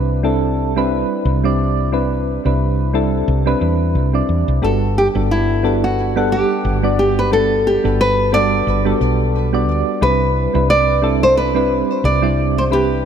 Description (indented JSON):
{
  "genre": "sunset chillout",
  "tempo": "89 BPM",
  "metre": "4/4",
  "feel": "swing 57% on 16ths",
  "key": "unclear",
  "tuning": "A4 = 442 Hz",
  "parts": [
    { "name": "soft electric-piano-like synth keys", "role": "accompaniment", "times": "0.0-13.1 s", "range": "G3 to F#5", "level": "-18 LUFS", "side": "right 2 dB", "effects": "chorus, auto-pan, tape echo" },
    { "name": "woody fretless electric bass", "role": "bass", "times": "0.0-13.1 s", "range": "G1 to E2", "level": "-18 LUFS", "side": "equal", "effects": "none" },
    { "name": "nylon-string guitar", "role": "melody", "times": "4.6-13.1 s", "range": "E4 to D5", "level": "-17 LUFS", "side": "equal", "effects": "digital delay" }
  ],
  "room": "light reverb, small room ambience",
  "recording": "none",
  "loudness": "-14 LUFS",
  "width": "side -8 dB against mid",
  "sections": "0.0-13.1 A section",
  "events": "none",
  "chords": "0.0 Cmaj7; 4.6 Gmaj7; 10.0 Cmaj7"
}